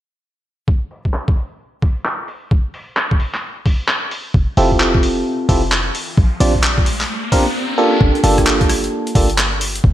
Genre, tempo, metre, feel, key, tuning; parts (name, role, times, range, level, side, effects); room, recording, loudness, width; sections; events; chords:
UK garage, two-step garage; 131 BPM; 4/4; swing 63% on 16ths; G dorian; A4 = 438 Hz
electronic kick drum; drums; 0.7-9.9 s; -15 LUFS; equal; overdrive, studio reverb
boom bap sampler-style drum kit; drums; 0.9-9.8 s; handclaps, hi-hat, rim click; -20 LUFS; equal; overdrive, low-pass filter on hats, studio reverb, low-pass filter on snare, gated reverb
short 808-style bass; bass; 4.3-9.9 s; F1 to Bb1; -18 LUFS; equal
riser; sound effects; 5.9-8.0 s; -26 LUFS; equal
FM electric piano; stabs; 4.6-9.3 s; Bb3 to D5; -17 LUFS; right 1 dB; chorus, digital delay
light reverb, digital ambience; bright 1980s-style digital production; -14 LUFS; side -13 dB against mid
0.7-8.0 A section; 8.0-9.9 B section
filter sweep on drum 0.7-8.0; riser 5.9-8.0
0.7 N.C.; 4.1 Fmaj7; 5.9 Bb69; 8.0 Gm9